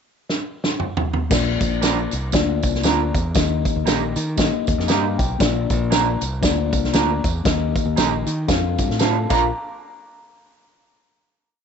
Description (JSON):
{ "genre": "uptempo 1960s-style soul", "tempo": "117 BPM", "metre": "4/4", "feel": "swing 59% on 8ths", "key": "Bb major", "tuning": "A4 = 440 Hz", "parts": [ { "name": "natural country drum kit", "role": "drums", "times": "0.3-9.4 s", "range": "crash cymbal, hi-hat, kick drum, snare drum, toms", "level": "-21 LUFS", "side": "right 1 dB", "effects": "none" }, { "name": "mellow tine electric piano", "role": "accompaniment", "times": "1.3-9.5 s", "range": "Bb1 to G5", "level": "-24 LUFS", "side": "left 12 dB", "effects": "medium stereo tremolo" }, { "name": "modern bright fingered electric bass", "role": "bass", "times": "1.3-9.5 s", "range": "Bb1 to Eb3", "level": "-24 LUFS", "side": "equal", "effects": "none" }, { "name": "tambourine", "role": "percussion", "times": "1.3-9.5 s", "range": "none", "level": "-32 LUFS", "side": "right 18 dB", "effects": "none" }, { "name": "electric guitar through a small old amp", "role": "stabs", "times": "1.8-9.4 s", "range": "A3 to Bb4", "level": "-25 LUFS", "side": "right 10 dB", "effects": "none" } ], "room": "moderate spring reverb, RT60 2.2 s", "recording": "1960s-style stereo with parts hard left and right, nothing above 7.9 kHz", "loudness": "-18 LUFS", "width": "side -7 dB against mid", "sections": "0.0-1.3 pickup bar; 1.3-9.5 verse; 9.5-11.6 final hit", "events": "drum fill 0.3-1.3; tine electric piano fill 4.6-5.4", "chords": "0.0 N.C.; 1.3 Bb; 3.4 Eb; 5.4 Bb; 7.5 Eb; 8.5 F; 9.3 Bb; 9.5 N.C.", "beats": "0.28 0.80 | 1.31 1.82 2.33 2.84 | 3.35 3.87 4.38 4.89 | 5.40 5.92 6.43 6.94 | 7.46 7.97 8.48 9.00" }